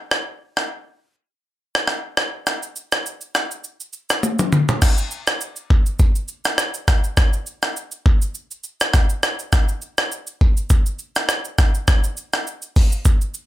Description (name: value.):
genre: afrobeats.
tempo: 102 BPM.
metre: 4/4.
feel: swing 55% on 16ths.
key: none.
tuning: none.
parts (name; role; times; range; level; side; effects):
jungle sampler-style drum kit; drums; 0.1-13.5 s; crash cymbal, hi-hat, kick drum, rim click, shaker, toms; -17 LUFS; equal; none.
room: light reverb.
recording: none.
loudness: -18 LUFS.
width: side -15 dB against mid.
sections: 0.0-4.8 A section; 4.8-13.5 B section.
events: drum fill 4.2-4.8.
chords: none.